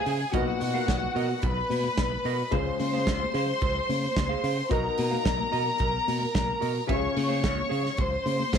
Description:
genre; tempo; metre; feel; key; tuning
disco; 110 BPM; 4/4; straight; Db major; A4 = 440 Hz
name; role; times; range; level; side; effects
clear studio violin section; second line; 0.0-8.6 s; Gb4 to Db6; -28 LUFS; left 1 dB; none
semi-hollow electric guitar; accompaniment; 0.0-8.6 s; Gb4 to F5; -35 LUFS; right 17 dB; spring reverb
warm grand piano; accompaniment; 0.0-8.6 s; Bb2 to Db5; -34 LUFS; left 12 dB; none
modern bright fingered electric bass; bass; 0.1-8.6 s; Cb2 to Db3; -31 LUFS; right 1 dB; none
modern studio drum kit; drums; 0.1-8.6 s; hi-hat, kick drum, snare drum; -31 LUFS; right 1 dB; none
congas; percussion; 0.1-8.6 s; none; -38 LUFS; left 12 dB; none
room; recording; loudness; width
small room ambience; 1960s-style stereo with parts hard left and right; -24 LUFS; side -7 dB against mid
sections
0.0-8.6 A section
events
none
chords
0.3 Cbmaj7; 2.5 Dbmaj7; 4.7 Cbmaj7; 6.9 Dbmaj7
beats
| 0.34 0.88 1.43 1.98 | 2.52 3.07 3.62 4.17 | 4.71 5.26 5.80 6.35 | 6.89 7.44 7.98 8.53

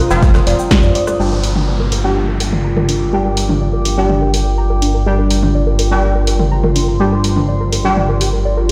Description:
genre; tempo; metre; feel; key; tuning
melodic techno; 124 BPM; 4/4; straight; G minor; A4 = 439 Hz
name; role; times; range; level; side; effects
deep dark ambient pad; sustained chords; 0.0-8.7 s; F4 to Eb6; -24 LUFS; equal; chorus, built-in reverb, sidechain pumping
synth brass stab; stabs; 0.0-8.7 s; F3 to G4; -22 LUFS; equal; chorus, phaser, sidechain pumping, tape echo
swarming drone; drone; 0.1-8.7 s; G2; -29 LUFS; equal; none
soft round pluck; arpeggios; 0.1-8.7 s; D4 to Bb5; -25 LUFS; equal; chorus, sidechain pumping, tape echo
fat analog bass; bass; 0.1-8.7 s; F1 to F2; -19 LUFS; equal; sidechain pumping
punchy analog drum machine; drums; 0.1-8.7 s; hi-hat, rim click, shaker, snare drum, toms; -21 LUFS; equal; overdrive
crisp fusion drum kit; drums; 0.2-1.1 s; hi-hat, snare drum; -33 LUFS; equal; sidechain pumping on hats, high-pass filter on hats, high-pass filter on snare, high-pass filter on room
electronic kick drum; drums; 0.2-0.8 s; none; -14 LUFS; equal; overdrive
downlifter; sound effects; 1.2-5.1 s; none; -29 LUFS; equal; none
room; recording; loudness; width
light reverb, digital ambience; played on a big sound system in a bare room, stone room reverb; -15 LUFS; mono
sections
0.0-1.2 A section; 1.2-8.7 B section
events
filter sweep on synth arpeggio sound 1.2-8.7; filter sweep on synth stab 1.2-8.7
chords
0.0 F7sus4; 1.2 Gm7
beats
0.23 0.71 | 1.19 1.68 2.16 2.65 | 3.13 3.61 4.10 4.58 | 5.06 5.55 6.03 6.52 | 7.00 7.48 7.97 8.45

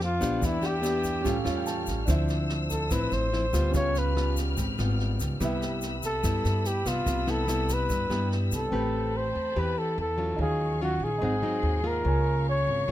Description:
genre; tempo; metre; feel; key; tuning
bossa nova; 144 BPM; 4/4; straight; unclear; A4 = 440 Hz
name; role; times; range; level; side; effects
breathy flugelhorn; melody; 0.0-12.9 s; E4 to Db5; -29 LUFS; equal; none
nylon-string guitar; accompaniment; 0.0-12.9 s; G2 to B4; -31 LUFS; left 2 dB; none
warm grand piano; accompaniment; 0.0-12.9 s; C4 to B5; -37 LUFS; right 5 dB; none
rich studio string section; sustained chords; 0.0-12.9 s; Ab4 to F6; -38 LUFS; left 3 dB; none
upright bass; bass; 0.0-12.9 s; Ab1 to G2; -29 LUFS; equal; none
jazz brush drum kit; drums; 0.0-8.6 s; kick drum, rim click, snare drum; -35 LUFS; equal; none
egg shaker; percussion; 0.2-8.7 s; none; -41 LUFS; left 6 dB; none
room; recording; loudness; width
little or no reverb; close, detailed microphones; -25 LUFS; side -13 dB against mid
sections
0.0-8.7 A section; 8.7-12.9 B section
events
grand piano fill 1.3-2.1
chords
0.4 Em7; 1.3 A7b13; 2.1 Dm9; 3.7 Db7#11; 5.4 Cmaj7; 8.7 Am9; 10.4 Ebm9; 11.2 Ab7; 12.1 Db6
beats
0.01 | 0.42 0.84 1.25 1.67 | 2.08 2.50 2.91 3.33 | 3.74 4.16 4.57 4.99 | 5.40 5.82 6.23 6.65 | 7.06 7.48 7.89 8.31 | 8.72 9.14 9.56 9.97 | 10.39 10.80 11.22 11.63 | 12.05 12.46 12.88

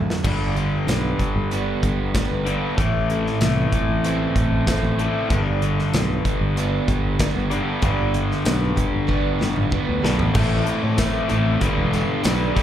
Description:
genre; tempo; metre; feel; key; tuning
classic rock; 95 BPM; 4/4; straight; unclear; A4 = 440 Hz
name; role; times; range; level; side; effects
picked twelve-string acoustic guitar; accompaniment; 0.0-12.6 s; G2 to A4; -31 LUFS; right 2 dB; slapback echo
crunchy overdriven guitar; riff; 0.0-12.6 s; G2 to E4; -25 LUFS; right 7 dB; slapback echo
raw garage guitar; riff; 0.0-12.6 s; G2 to A3; -26 LUFS; left 8 dB; overdrive, slapback echo
big rock drum kit; drums; 0.1-12.6 s; crash cymbal, hi-hat, kick drum, snare drum, tambourine, toms; -25 LUFS; equal; none
sustaining fretless electric bass; bass; 0.2-12.5 s; E1 to A2; -23 LUFS; equal; none
tambourine; percussion; 10.3-12.4 s; none; -42 LUFS; left 1 dB; none
room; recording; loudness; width
little or no reverb; live gig heard through the venue's PA, club reverb; -18 LUFS; side -10 dB against mid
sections
0.2-10.4 A section; 10.4-12.6 B section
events
drum fill 0.0, 9.1-10.4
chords
0.2 G; 2.8 Am; 5.3 G; 10.4 Am; 11.6 G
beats
| 0.24 0.88 1.51 2.14 | 2.77 3.41 4.04 4.67 | 5.30 5.93 6.57 7.20 | 7.83 8.46 9.09 9.73 | 10.36 10.99 11.62 12.25

